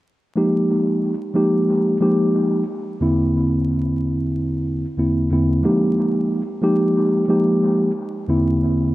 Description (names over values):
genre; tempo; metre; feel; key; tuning
hip hop; 91 BPM; 4/4; swing 54% on 16ths; F dorian; A4 = 440 Hz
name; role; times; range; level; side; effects
mellow tine electric piano; accompaniment; 0.4-8.9 s; E2 to G4; -17 LUFS; equal; medium stereo tremolo, cassette tape, dub echo
room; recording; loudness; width
light reverb; echo-heavy mix, vinyl crackle; -17 LUFS; side -17 dB against mid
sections
0.4-8.9 A section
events
none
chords
0.4 Fm11; 3.0 C9/E; 5.6 Fm11; 8.3 C9/E